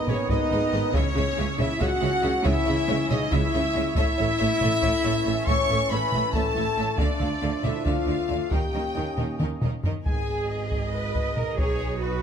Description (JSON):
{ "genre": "cinematic, epic orchestral film score", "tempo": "277 BPM (eighths)", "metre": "7/8", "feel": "straight", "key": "unclear", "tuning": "A4 = 439 Hz", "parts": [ { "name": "rich symphonic violin section", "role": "melody", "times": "0.0-12.2 s", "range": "B4 to C#6", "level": "-35 LUFS", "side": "left 3 dB", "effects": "none" }, { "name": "mellow small flute group", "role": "second line", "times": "0.0-9.4 s", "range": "C#5 to C#6", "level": "-33 LUFS", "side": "left 1 dB", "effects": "none" }, { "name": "dark French horn section", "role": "sustained chords", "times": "0.0-11.7 s", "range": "B3 to C#5", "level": "-28 LUFS", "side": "left 6 dB", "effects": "none" }, { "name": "warm trombone section", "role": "sustained chords", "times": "0.0-11.7 s", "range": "D#3 to D4", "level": "-34 LUFS", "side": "right 5 dB", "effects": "none" }, { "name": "warm woodwind section", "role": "sustained chords", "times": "0.0-12.2 s", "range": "A3 to D#5", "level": "-39 LUFS", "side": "right 1 dB", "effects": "none" }, { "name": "clear trumpet section", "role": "stabs", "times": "0.0-12.2 s", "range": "B4 to C#6", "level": "-31 LUFS", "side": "right 2 dB", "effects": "none" }, { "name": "warm symphonic violin section", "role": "second line", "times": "0.1-12.2 s", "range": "A#4 to G#5", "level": "-36 LUFS", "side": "left 3 dB", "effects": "none" }, { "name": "rich studio viola section", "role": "accompaniment", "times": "0.1-12.2 s", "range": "F#3 to A4", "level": "-36 LUFS", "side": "right 1 dB", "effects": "none" }, { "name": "clear studio double bass section", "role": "bass", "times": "0.1-12.2 s", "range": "G#1 to D#2", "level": "-30 LUFS", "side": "right 4 dB", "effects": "none" }, { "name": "rich symphonic cello section", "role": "bass", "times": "0.1-12.2 s", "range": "G#2 to B4", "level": "-31 LUFS", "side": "right 3 dB", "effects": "none" }, { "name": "solo taiko drums", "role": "drums", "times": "0.1-12.0 s", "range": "none", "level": "-28 LUFS", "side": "equal", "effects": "none" } ], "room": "moderate scoring stage reverb, RT60 1.5 s", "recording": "none", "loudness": "-22 LUFS", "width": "side -8 dB against mid", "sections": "0.0-10.1 A section; 10.1-12.2 B section", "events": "drum fill 9.4-10.1", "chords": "0.0 G#m; 0.9 C#m; 4.0 A; 7.0 Dm; 8.5 D#7; 10.1 G#m; 11.6 B" }